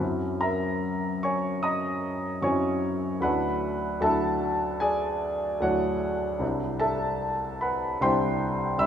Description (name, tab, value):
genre	classical, impressionist solo piano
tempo	75 BPM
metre	4/4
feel	rubato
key	unclear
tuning	A4 = 440 Hz
part	clear grand piano	solo	0.0-8.9 s	C2 to E6	-24 LUFS	equal	none
room	moderate scoring stage reverb, RT60 1.7 s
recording	minimal, uncompressed stereo recording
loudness	-25 LUFS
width	side -9 dB against mid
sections	0.0-8.9 A section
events	none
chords	0.0 F#7#11; 3.3 D69; 6.4 Cadd9